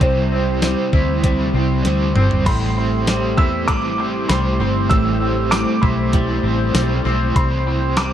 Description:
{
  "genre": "dream pop",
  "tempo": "98 BPM",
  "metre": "4/4",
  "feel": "straight",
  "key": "A minor",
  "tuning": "A4 = 440 Hz",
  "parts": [
    { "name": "felt-muted upright piano", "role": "melody", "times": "0.0-8.1 s", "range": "C5 to E6", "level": "-24 LUFS", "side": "right 2 dB", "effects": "analog delay" },
    { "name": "overdriven electric guitar", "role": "accompaniment", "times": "0.0-8.1 s", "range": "A2 to C5", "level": "-26 LUFS", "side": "right 3 dB", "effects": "tremolo, wide subtle chorus, analog delay" },
    { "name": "warbly tape-like pad", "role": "sustained chords", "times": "0.0-8.1 s", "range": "G3 to C5", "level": "-23 LUFS", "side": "right 1 dB", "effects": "chorus, built-in reverb" },
    { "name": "twangy electric guitar", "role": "arpeggios", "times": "0.0-8.1 s", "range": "A2 to E4", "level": "-24 LUFS", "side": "left 2 dB", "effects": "analog chorus, analog delay" },
    { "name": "vintage muted fingered electric bass", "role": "bass", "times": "0.0-8.1 s", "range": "G1 to E2", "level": "-20 LUFS", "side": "equal", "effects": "none" },
    { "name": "clean 12-bit digital drum machine", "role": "drums", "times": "0.0-8.1 s", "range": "crash cymbal, hi-hat, kick drum, snare drum, tambourine, toms", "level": "-20 LUFS", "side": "equal", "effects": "analog delay" }
  ],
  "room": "light reverb, digital ambience",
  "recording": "echo-heavy mix",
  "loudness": "-15 LUFS",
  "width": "side -10 dB against mid",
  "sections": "0.0-2.5 A section; 2.5-8.1 A section",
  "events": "drum fill 1.8-2.5",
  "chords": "0.0 C; 2.5 Am7; 7.4 C"
}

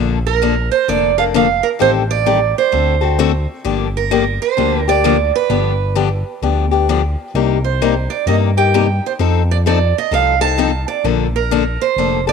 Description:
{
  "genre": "acoustic string swing (jazz manouche)",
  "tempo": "130 BPM",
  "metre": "4/4",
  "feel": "swing 64% on 8ths",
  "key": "Bb major",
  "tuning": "A4 = 440 Hz",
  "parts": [
    { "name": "picked steel-string acoustic guitar", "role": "accompaniment", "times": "0.0-12.3 s", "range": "C3 to A4", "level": "-18 LUFS", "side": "left 12 dB", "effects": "none" },
    { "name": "smooth gliding synth bass", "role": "bass", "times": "0.0-12.3 s", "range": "F1 to G2", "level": "-18 LUFS", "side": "equal", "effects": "none" },
    { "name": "picked steel-string acoustic guitar", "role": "melody", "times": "0.3-12.3 s", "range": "Bb4 to A5", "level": "-17 LUFS", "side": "right 12 dB", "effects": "none" }
  ],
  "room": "moderate spring reverb, RT60 2.6 s",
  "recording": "1960s-style stereo with parts hard left and right",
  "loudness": "-13 LUFS",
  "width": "side -6 dB against mid",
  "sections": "0.0-12.3 A section",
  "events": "none",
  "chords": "0.0 Bbmaj7; 1.8 Am7b5; 2.7 D7; 3.7 Gm7; 5.5 G7; 7.4 Cm7; 9.2 F7; 11.0 Bbmaj7"
}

